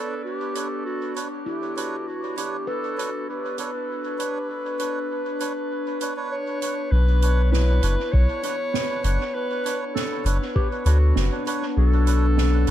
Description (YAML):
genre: ambient dub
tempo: 99 BPM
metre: 4/4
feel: straight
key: B minor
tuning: A4 = 441 Hz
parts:
  - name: warm clarinet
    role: melody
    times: 0.0-12.7 s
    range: F#4 to C#5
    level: -28 LUFS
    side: equal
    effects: tape echo
  - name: warbly tape-like pad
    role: sustained chords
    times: 0.0-12.7 s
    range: B3 to F#5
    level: -32 LUFS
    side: left 4 dB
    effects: chorus, built-in reverb
  - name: melodica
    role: stabs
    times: 0.0-12.7 s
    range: D4 to C#5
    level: -32 LUFS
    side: right 4 dB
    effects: dub echo
  - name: soft-mallet drum kit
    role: drums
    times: 0.6-12.7 s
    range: hi-hat, snare drum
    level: -31 LUFS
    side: right 5 dB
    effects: dub echo
  - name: handpan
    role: arpeggios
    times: 1.5-12.7 s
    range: E4 to B4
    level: -36 LUFS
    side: left 2 dB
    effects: tape echo
  - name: soft dub sub bass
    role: bass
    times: 6.9-12.7 s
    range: F#1 to D2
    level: -18 LUFS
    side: equal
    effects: none
  - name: electronic kick drum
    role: drums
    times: 8.1-10.7 s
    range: none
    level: -22 LUFS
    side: equal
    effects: none
room: little or no reverb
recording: echo-heavy mix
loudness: -21 LUFS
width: side -12 dB against mid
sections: 0.0-6.9 A section; 6.9-12.7 B section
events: none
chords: 0.0 Bmadd9